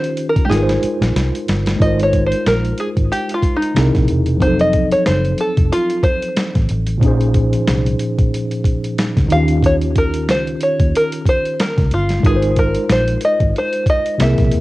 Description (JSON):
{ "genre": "R&B, neo-soul", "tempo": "92 BPM", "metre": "4/4", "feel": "swing 56% on 16ths", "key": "Ab major", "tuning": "A4 = 438 Hz", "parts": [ { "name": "open-back banjo", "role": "melody", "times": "0.0-14.6 s", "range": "Eb4 to F5", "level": "-18 LUFS", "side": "equal", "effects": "cassette tape" }, { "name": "tine electric piano", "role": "accompaniment", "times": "0.0-14.6 s", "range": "Bb2 to C5", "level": "-19 LUFS", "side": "equal", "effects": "overdrive, fast stereo tremolo, cassette tape" }, { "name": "boom bap sampler-style drum kit", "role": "drums", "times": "0.0-14.6 s", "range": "hi-hat, kick drum, snare drum", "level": "-18 LUFS", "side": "equal", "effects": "cassette tape" }, { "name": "vintage muted fingered electric bass", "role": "bass", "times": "0.5-14.6 s", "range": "E1 to Eb2", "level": "-18 LUFS", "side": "equal", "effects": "none" } ], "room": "moderate small room reverb, RT60 0.5 s", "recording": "home recording on cassette", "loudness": "-14 LUFS", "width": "side -18 dB against mid", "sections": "0.0-1.8 A section; 1.8-14.6 B section", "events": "drum fill 0.5-1.8; five-string banjo solo 1.8-14.6", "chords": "0.5 Ab69; 3.8 C7alt; 4.4 F7b9; 7.0 Bbm11; 9.3 Eb9; 12.2 Ab69" }